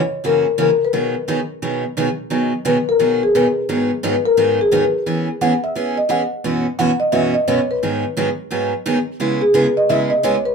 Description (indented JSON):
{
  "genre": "country",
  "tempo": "174 BPM",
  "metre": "4/4",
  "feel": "swing 63% on 8ths",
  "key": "B major",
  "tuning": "A4 = 437 Hz",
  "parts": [
    { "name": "marimba with soft mallets", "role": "melody", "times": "0.0-10.5 s", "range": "G#4 to F#5", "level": "-17 LUFS", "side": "left 2 dB", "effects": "none" },
    { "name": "picked steel-string acoustic guitar", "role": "accompaniment", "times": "0.2-10.4 s", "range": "F#2 to G#4", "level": "-19 LUFS", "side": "right 2 dB", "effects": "none" }
  ],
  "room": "moderate small room reverb, RT60 0.6 s",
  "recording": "band playing live in one room",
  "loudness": "-15 LUFS",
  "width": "side -5 dB against mid",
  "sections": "0.0-2.3 A section; 2.3-10.5 B section",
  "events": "marimba solo 2.3-10.5",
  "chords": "0.0 F#7; 0.9 B6; 3.7 G#m9; 5.1 E69; 6.4 F#7sus4; 7.8 G#m7; 9.2 C#m7",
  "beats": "0.23 0.58 | 0.93 1.27 1.61 1.96 | 2.31 2.65 3.00 3.34 | 3.68 4.03 4.37 4.72 | 5.06 5.41 5.75 6.10 | 6.44 6.79 7.13 7.47 | 7.82 8.16 8.51 8.85 | 9.20 9.54 9.89 10.23"
}